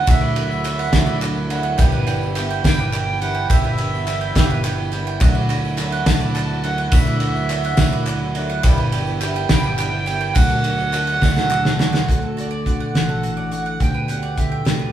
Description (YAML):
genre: indie folk with a building arrangement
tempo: 70 BPM (dotted quarters)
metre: 6/8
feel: straight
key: D major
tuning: A4 = 440 Hz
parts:
  - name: accordion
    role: melody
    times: 0.0-14.9 s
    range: D5 to A5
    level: -25 LUFS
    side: right 2 dB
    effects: none
  - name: dark upright piano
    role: accompaniment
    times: 0.0-12.1 s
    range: G1 to E5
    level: -30 LUFS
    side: right 3 dB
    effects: none
  - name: picked twelve-string acoustic guitar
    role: accompaniment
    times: 0.0-12.1 s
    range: G2 to F#4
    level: -29 LUFS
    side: left 1 dB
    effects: none
  - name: bowl-back mandolin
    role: arpeggios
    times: 0.0-14.9 s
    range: F#4 to G5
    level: -27 LUFS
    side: right 6 dB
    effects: none
  - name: fingered electric bass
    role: bass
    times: 0.0-14.9 s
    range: G1 to D2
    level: -23 LUFS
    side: equal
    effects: none
  - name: loose indie drum kit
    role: drums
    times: 0.1-14.8 s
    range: hi-hat, kick drum, ride cymbal, snare drum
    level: -20 LUFS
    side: equal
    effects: none
  - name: group handclap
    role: percussion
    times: 0.1-11.9 s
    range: none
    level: -35 LUFS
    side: left 3 dB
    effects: none
  - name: tambourine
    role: percussion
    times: 0.1-12.0 s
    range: none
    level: -41 LUFS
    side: left 4 dB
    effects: none
  - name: fingerpicked steel-string acoustic guitar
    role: accompaniment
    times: 12.1-14.9 s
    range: D2 to F#4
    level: -28 LUFS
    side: left 4 dB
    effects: none
room: moderate stone room reverb, RT60 1.3 s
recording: band playing live in one room, studio reverb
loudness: -17 LUFS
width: side -11 dB against mid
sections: 0.0-12.1 A section; 12.1-14.9 B section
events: drum fill 11.2-12.1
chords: 0.0 Dadd9; 1.8 G6; 5.2 Dadd9; 8.6 G6; 10.4 D; 13.8 G/D